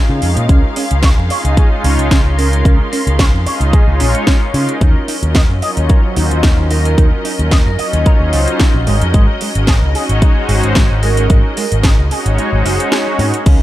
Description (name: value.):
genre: nu-disco, nu disco.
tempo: 111 BPM.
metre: 4/4.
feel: swing 54% on 16ths.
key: unclear.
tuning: A4 = 440 Hz.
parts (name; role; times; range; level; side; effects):
warm analog pad; accompaniment; 0.0-13.6 s; Gb3 to Eb5; -20 LUFS; equal; chorus, sidechain pumping, analog delay.
warm studio string section; sustained chords; 0.0-13.6 s; Gb3 to C6; -24 LUFS; left 2 dB; sidechain pumping.
picked electric bass with an envelope filter; bass; 0.1-13.6 s; Gb1 to Db3; -14 LUFS; equal; tube saturation.
electric guitar with an envelope filter; riff; 0.2-13.6 s; Ab3 to Eb5; -23 LUFS; right 2 dB; wide subtle chorus, analog delay.
house drum kit; drums; 0.2-13.6 s; crash cymbal, hi-hat, snare drum; -20 LUFS; equal; none.
electronic kick drum; drums; 0.5-13.6 s; none; -11 LUFS; equal; none.
vibraphone with medium hard mallets; melody; 2.4-13.3 s; Bb4 to Eb5; -24 LUFS; right 3 dB; vintage 12-bit sampler grit, analog delay.
room: little or no reverb.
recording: none.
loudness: -10 LUFS.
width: side -15 dB against mid.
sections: 0.0-13.6 A section.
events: kick drops out 12.4-13.5.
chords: 0.0 Db6; 4.8 Ebm7; 8.9 Ab7sus4.